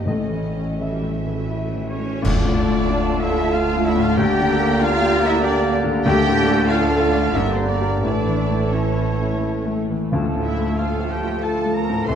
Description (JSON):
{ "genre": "classical, romantic movement for piano and orchestra", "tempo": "80-99 BPM", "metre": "3/4", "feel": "rubato", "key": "D minor", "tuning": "A4 = 435 Hz", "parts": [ { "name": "clear grand piano", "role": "melody", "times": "0.0-12.2 s", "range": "C2 to E5", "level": "-22 LUFS", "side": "left 3 dB", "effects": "none" }, { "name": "warm symphonic violin section", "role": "melody", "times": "0.0-12.2 s", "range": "C#4 to C6", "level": "-32 LUFS", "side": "left 2 dB", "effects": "none" }, { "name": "warm studio violin section", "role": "second line", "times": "0.0-12.2 s", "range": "C5 to C6", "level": "-31 LUFS", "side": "left 3 dB", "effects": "none" }, { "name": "rich symphonic viola section", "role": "accompaniment", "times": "0.0-12.2 s", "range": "G3 to A4", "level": "-30 LUFS", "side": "right 3 dB", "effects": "none" }, { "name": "rich symphonic cello section", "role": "bass", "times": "0.0-12.2 s", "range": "A2 to C5", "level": "-27 LUFS", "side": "right 2 dB", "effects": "none" }, { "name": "warm symphonic double bass section", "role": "bass", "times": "0.0-12.2 s", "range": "G1 to D2", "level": "-26 LUFS", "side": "right 4 dB", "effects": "none" }, { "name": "timpani", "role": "percussion", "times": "0.1-11.1 s", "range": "A2 to D3", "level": "-28 LUFS", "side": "left 1 dB", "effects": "none" }, { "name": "warm oboe", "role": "second line", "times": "1.9-12.2 s", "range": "C5 to C6", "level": "-30 LUFS", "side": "right 2 dB", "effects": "none" }, { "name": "flute section", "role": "second line", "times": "2.2-12.2 s", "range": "A5 to Bb5", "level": "-31 LUFS", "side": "right 3 dB", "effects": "none" }, { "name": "warm clarinet", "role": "second line", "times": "2.2-12.2 s", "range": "A4 to F5", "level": "-33 LUFS", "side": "equal", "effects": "none" }, { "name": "warm bassoon", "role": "accompaniment", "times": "2.2-12.2 s", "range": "D3 to F3", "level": "-29 LUFS", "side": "right 2 dB", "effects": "none" }, { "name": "mellow trombone section", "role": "sustained chords", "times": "2.2-12.2 s", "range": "D3 to Bb3", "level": "-29 LUFS", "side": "right 3 dB", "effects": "none" }, { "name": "clash cymbals and concert bass drum", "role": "percussion", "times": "2.2-3.5 s", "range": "none", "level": "-27 LUFS", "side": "equal", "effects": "none" }, { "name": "warm French horn section", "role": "sustained chords", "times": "2.3-12.2 s", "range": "A3 to A4", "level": "-28 LUFS", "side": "left 1 dB", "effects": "none" } ], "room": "wet recital hall reverb, RT60 1.3 s", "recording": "dark, warm production", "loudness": "-17 LUFS", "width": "side -8 dB against mid", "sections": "0.0-2.2 A section; 2.2-12.2 B section", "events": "band accent 2.2-2.9", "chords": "0.1 A; 2.2 Dm; 4.2 Gm/D; 6.1 Dm; 7.3 Gm; 8.0 A; 10.1 Dm" }